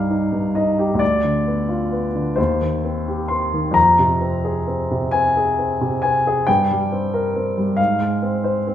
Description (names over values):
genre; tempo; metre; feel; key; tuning
classical, romantic nocturne for solo piano; 42-46 BPM (dotted quarters); 6/8; rubato; C minor; A4 = 440 Hz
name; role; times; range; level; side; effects
warm concert grand piano; solo; 0.0-8.7 s; C2 to C6; -17 LUFS; left 1 dB; none
room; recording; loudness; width
wet recital hall reverb, RT60 1.2 s; none; -17 LUFS; side -10 dB against mid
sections
0.0-8.7 A section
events
none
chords
0.0 Cm; 1.0 Dm6; 2.4 Cm/Eb; 3.8 Fm; 6.5 C5/G; 7.8 Fm/Ab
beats
| 1.01 2.37 | 3.76 5.12 | 6.47 7.78